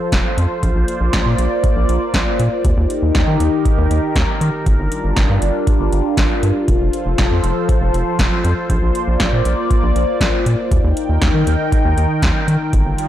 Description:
synth-pop; 119 BPM; 4/4; straight; A4 = 440 Hz
phased analog pad; sustained chords; 0.0-13.1 s; Eb3 to G5; -19 LUFS; left 1 dB; phaser, chorus
rubbery square bass; bass; 0.1-12.9 s; F1 to Eb3; -17 LUFS; equal
electro analog drum machine; drums; 0.1-13.1 s; hi-hat, kick drum, snare drum; -18 LUFS; equal
riser; sound effects; 12.9-13.1 s; -28 LUFS; right 1 dB
light reverb; blown-out, overdriven recording, overdrive; -14 LUFS; side -12 dB against mid
0.0-13.1 A section
riser 12.9
0.0 F; 0.6 Bbadd9; 2.6 Eb; 4.7 Gm7; 6.7 F; 8.7 Bbadd9; 10.7 Eb

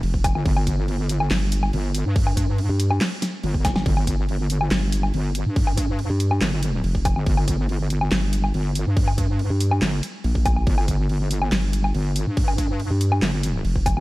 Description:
heavy wobble dubstep; 141 BPM; 4/4; half-time; G minor; A4 = 440 Hz
vowel-sweep wobble bass; bass; 0.0-14.0 s; F1 to G2; -21 LUFS; equal; chorus, overdrive
dubstep drum kit; drums; 0.0-14.0 s; crash cymbal, handclaps, hi-hat, snare drum, woodblock; -27 LUFS; equal
electronic kick drum; drums; 0.1-13.9 s; -22 LUFS; equal; overdrive
wobble bass; bass; 0.4-14.0 s; G1 to G2; -22 LUFS; equal; chorus, overdrive
little or no reverb; dark, warm production; -19 LUFS; side -19 dB against mid
0.0-14.0 A section
drum fill 3.6

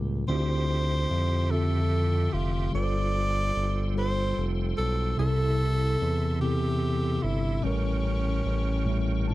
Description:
slow six-eight R&B; 49 BPM (dotted quarters); 6/8; straight; C major; A4 = 440 Hz
mellow tine electric piano; accompaniment; 0.0-9.3 s; A2 to A5; -30 LUFS; equal; medium stereo tremolo
smooth synth bass; bass; 0.0-9.3 s; F1 to F2; -27 LUFS; equal
breathy tenor saxophone; melody; 0.3-9.3 s; C#4 to D5; -31 LUFS; equal
bright tonewheel organ; sustained chords; 0.3-9.3 s; G4 to C#6; -41 LUFS; right 1 dB; overdrive, chorus vibrato, fast rotary speaker
little or no reverb; cassette tape; -24 LUFS; side -17 dB against mid
0.0-9.3 A section
tine electric piano fill 8.9-9.3
0.3 Dm11; 2.7 G9sus4; 5.2 C6; 7.6 A7b9

